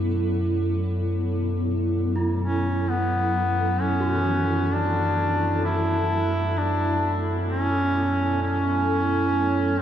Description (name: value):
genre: dark ambient drone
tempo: 65 BPM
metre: 4/4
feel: straight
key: F# minor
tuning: A4 = 442 Hz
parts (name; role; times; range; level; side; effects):
- granular cloud pad; sustained chords; 0.0-9.8 s; F#3 to D6; -28 LUFS; equal; built-in reverb
- gamelan-type bronze metallophone; arpeggios; 0.0-9.5 s; E3 to F#4; -33 LUFS; right 2 dB; diffuse ambient delay
- deep rumbling drone; drone; 0.0-9.8 s; F#2 to A3; -26 LUFS; equal; built-in reverb
- clear duduk; melody; 2.4-9.8 s; B3 to E4; -24 LUFS; equal; diffuse ambient delay
room: wet huge ambient reverb, RT60 8.1 s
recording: small room ambience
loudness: -21 LUFS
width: side -10 dB against mid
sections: 0.0-3.8 A section; 3.8-9.8 B section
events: none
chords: 0.0 E5/F#; 3.8 F#m